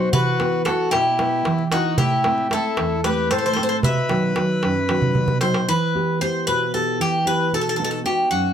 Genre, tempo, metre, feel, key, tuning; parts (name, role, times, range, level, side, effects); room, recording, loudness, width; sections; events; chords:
greek folk, Greek bouzouki band; 227 BPM (eighths); 7/8; straight; E harmonic minor; A4 = 439 Hz
Greek bouzouki; melody; 0.0-8.5 s; F#4 to E5; -21 LUFS; left 2 dB
accordion; second line; 0.0-5.4 s; D#4 to B4; -25 LUFS; left 3 dB
nylon-string guitar; accompaniment; 0.0-8.5 s; E2 to F#5; -23 LUFS; right 3 dB
darbuka; percussion; 0.1-5.7 s; -23 LUFS; right 2 dB
moderate studio reverb, RT60 0.6 s; close, detailed microphones; -18 LUFS; side -8 dB against mid
0.0-5.7 A section; 5.7-8.5 B section
drum fill 5.0-5.7
0.1 Esus2; 2.0 Am; 3.8 B; 5.7 Em; 7.5 B